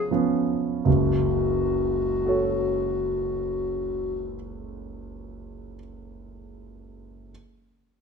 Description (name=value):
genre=classical, romantic duo for clarinet and grand piano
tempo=42 BPM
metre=3/4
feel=rubato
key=F# minor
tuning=A4 = 440 Hz
part: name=clear clarinet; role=melody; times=0.0-4.3 s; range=F#4 to G#4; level=-26 LUFS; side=left 4 dB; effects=none
part: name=clear concert grand piano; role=accompaniment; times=0.0-7.3 s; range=F#1 to C#5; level=-26 LUFS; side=right 3 dB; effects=none
room=moderate recital hall reverb, RT60 1.6 s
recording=close, detailed microphones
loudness=-22 LUFS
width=side -5 dB against mid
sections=0.9-5.1 A section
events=none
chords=0.0 C#7/F#; 0.9 F#m